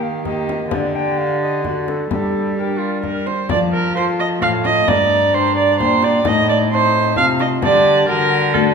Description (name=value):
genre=classical, renaissance-style consort dance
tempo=131 BPM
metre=3/4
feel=straight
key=G minor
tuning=A4 = 441 Hz
part: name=alto recorder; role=melody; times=0.0-8.7 s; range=A4 to Bb5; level=-27 LUFS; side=left 3 dB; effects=none
part: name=warm viola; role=second line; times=0.0-8.7 s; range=F4 to F5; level=-17 LUFS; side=right 4 dB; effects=none
part: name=Celtic harp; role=accompaniment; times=0.0-8.7 s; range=G2 to C5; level=-24 LUFS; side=left 7 dB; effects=none
part: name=mellow trombone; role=accompaniment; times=0.0-8.7 s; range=Bb3 to G4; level=-24 LUFS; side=left 4 dB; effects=none
part: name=warm cello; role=bass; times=0.0-8.7 s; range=G2 to G3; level=-23 LUFS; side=right 2 dB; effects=none
part: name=frame drum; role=percussion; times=0.3-8.7 s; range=none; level=-27 LUFS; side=left 4 dB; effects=none
room=wet recital hall reverb, RT60 1.5 s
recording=minimal, uncompressed stereo recording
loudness=-14 LUFS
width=side -5 dB against mid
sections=0.0-3.5 A section; 3.5-8.7 A section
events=none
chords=0.0 Eb; 0.7 Dsus4; 1.6 D; 2.1 Gm; 3.5 F; 4.9 Gm; 6.3 Adim; 7.6 Dsus4; 8.1 D